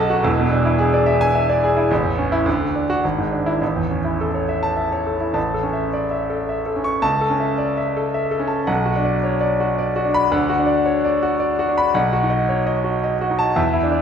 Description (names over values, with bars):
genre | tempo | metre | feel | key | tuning
classical, virtuoso piano study | 109 BPM | 3/4 | rubato | A major | A4 = 440 Hz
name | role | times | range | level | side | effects
clear concert grand piano | solo | 0.0-14.0 s | E1 to C#6 | -17 LUFS | equal | none
room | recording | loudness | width
wet recital hall reverb, RT60 1.7 s | recorded in a church or concert hall | -17 LUFS | side -7 dB against mid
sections
0.0-5.4 A section; 5.4-14.0 A section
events
none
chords
0.2 E7; 1.9 A; 2.5 D; 3.0 E7/G#; 3.6 A; 7.0 A/C#; 8.7 Bm; 10.3 Bm/D (rootless); 11.9 B